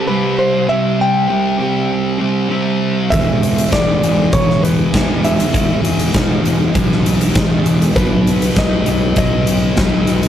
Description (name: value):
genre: rock, shoegaze and dream pop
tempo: 99 BPM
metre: 4/4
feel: straight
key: unclear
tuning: A4 = 441 Hz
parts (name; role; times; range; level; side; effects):
- direct-recorded clean electric guitar; melody; 0.0-10.3 s; B4 to G5; -20 LUFS; equal; none
- thick fuzz guitar; riff; 0.0-10.3 s; E2 to C4; -16 LUFS; equal; distortion
- overdriven fingered electric bass; bass; 3.1-10.3 s; E1 to B1; -18 LUFS; equal; none
- huge arena drum kit; drums; 3.1-10.3 s; hi-hat, kick drum, snare drum; -16 LUFS; equal; none
room: moderate small room reverb, RT60 0.5 s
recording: rough rehearsal-room recording, tube saturation, lossy compression artefacts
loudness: -12 LUFS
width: side -10 dB against mid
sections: 0.0-10.3 A section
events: none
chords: 0.0 C5; 3.1 E5; 8.0 B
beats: 0.08 | 0.69 1.30 1.90 2.51 | 3.12 3.72 4.33 4.94 | 5.54 6.15 6.75 7.36 | 7.97 8.57 9.18 9.79